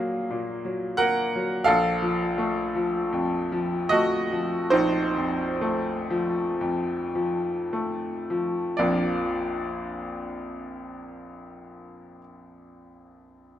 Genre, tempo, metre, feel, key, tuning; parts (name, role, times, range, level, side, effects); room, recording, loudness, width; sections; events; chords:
classical, romantic nocturne for solo piano; 24-44 BPM; 4/4; rubato; A4 = 440 Hz
bright baby grand piano; solo; 0.0-13.6 s; Bb1 to Gb5; -24 LUFS; equal
wet recital hall reverb, RT60 1.9 s; -23 LUFS; side -11 dB against mid
0.0-8.8 A section; 8.8-13.6 B section
slowing down 0.0-8.8
0.0 Gbmaj13/Bb; 1.7 F7/Bb; 8.8 Bb